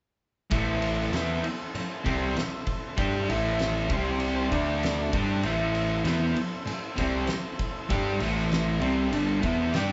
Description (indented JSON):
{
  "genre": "garage rock duo or trio",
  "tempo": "97 BPM",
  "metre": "4/4",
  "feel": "straight",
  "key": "A minor",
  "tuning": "A4 = 440 Hz",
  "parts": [
    { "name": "overdriven combo organ", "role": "sustained chords", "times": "0.5-9.9 s", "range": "C4 to B5", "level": "-40 LUFS", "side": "equal", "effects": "none" },
    { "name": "fuzz guitar", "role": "riff", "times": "0.5-9.9 s", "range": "G2 to G4", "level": "-29 LUFS", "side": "equal", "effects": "distortion" },
    { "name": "growling picked electric bass", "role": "bass", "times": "0.5-9.9 s", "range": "G1 to G2", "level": "-35 LUFS", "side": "equal", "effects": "overdrive, tube saturation" },
    { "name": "oversized low-tuned drum kit", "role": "drums", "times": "0.5-9.9 s", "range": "kick drum, ride cymbal, snare drum", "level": "-35 LUFS", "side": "equal", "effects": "none" }
  ],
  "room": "moderate large studio reverb, RT60 1.2 s",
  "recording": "band playing live in one room, nothing above 7.8 kHz",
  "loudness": "-27 LUFS",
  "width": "mono",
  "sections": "0.5-9.9 A section",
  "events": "transistor combo organ fill 3.6-5.4, 8.5-9.9",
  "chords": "0.5 Am; 3.9 C5; 4.5 D5; 5.1 Am",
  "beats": "| 0.50 1.12 1.74 2.35 | 2.97 3.58 4.20 4.82 | 5.43 6.05 6.66 7.28 | 7.90 8.51 9.13 9.74"
}